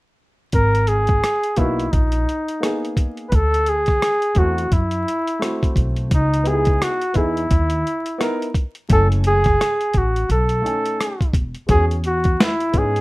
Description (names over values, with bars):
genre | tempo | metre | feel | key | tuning
hip hop, jazz-hop | 86 BPM | 4/4 | swing 60% on 16ths | G# minor | A4 = 440 Hz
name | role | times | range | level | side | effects
trumpet with bucket mute | melody | 0.5-13.0 s | D#4 to B4 | -20 LUFS | equal | none
upright bass | bass | 0.5-13.0 s | E1 to G#2 | -20 LUFS | equal | none
boom bap sampler-style drum kit | drums | 0.5-13.0 s | hi-hat, kick drum, rim click, snare drum | -20 LUFS | equal | none
dark upright piano | accompaniment | 1.6-13.0 s | G#3 to G#5 | -25 LUFS | equal | none
room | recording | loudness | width
light reverb | rough home demo mix, vinyl crackle | -17 LUFS | side -20 dB against mid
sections
0.5-13.0 A section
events
none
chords
0.5 G#madd9; 3.3 D9; 6.1 C#m9; 8.9 F#m7; 10.3 B13; 11.7 E69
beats
| 0.53 1.23 1.93 2.62 | 3.32 4.02 4.72 5.41 | 6.11 6.81 7.51 8.20 | 8.90 9.60 10.30 10.99 | 11.69 12.39